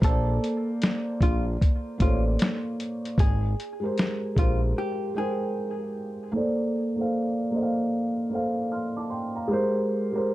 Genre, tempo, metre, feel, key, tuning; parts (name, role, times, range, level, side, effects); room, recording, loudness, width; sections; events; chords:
lo-fi hip hop; 76 BPM; 4/4; swing 63% on 16ths; Bb major; A4 = 439 Hz
vintage hollow-body jazz guitar; melody; 0.0-5.8 s; F4 to A4; -34 LUFS; equal; tape echo, plate reverb
felt-muted upright piano; accompaniment; 0.0-10.3 s; Ab3 to F6; -26 LUFS; equal; cassette tape, low-pass filter, plate reverb
smooth synth bass; bass; 0.0-4.7 s; Ab1 to Bb1; -25 LUFS; equal
lo-fi sampler-style drum kit; drums; 0.0-4.6 s; hi-hat, kick drum, snare drum; -23 LUFS; equal
moderate studio reverb, RT60 0.6 s; -24 LUFS; side -16 dB against mid
0.0-6.3 A section; 6.3-10.3 B section
break 4.8-6.3; filter sweep on felt piano 6.3-10.3
0.0 Bbmaj9; 3.2 Abmaj9; 6.3 Bbmaj9; 9.5 Abmaj9